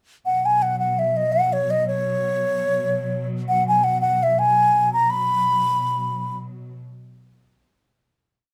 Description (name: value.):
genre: celtic folk, Celtic slip jig.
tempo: 112 BPM (dotted quarters).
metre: 9/8.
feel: straight.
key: unclear.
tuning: A4 = 442 Hz.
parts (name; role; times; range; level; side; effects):
mellow baroque flute; melody; 0.3-6.4 s; C#5 to B5; -21 LUFS; equal; none.
dark studio string section; drone; 0.3-6.8 s; B2 to F#3; -31 LUFS; equal; none.
room: moderate small room ambience, RT60 0.5 s.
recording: none.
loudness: -21 LUFS.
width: mono.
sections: 0.3-6.7 A section; 6.7-8.3 final hit.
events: none.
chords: 0.3 B5; 6.7 N.C..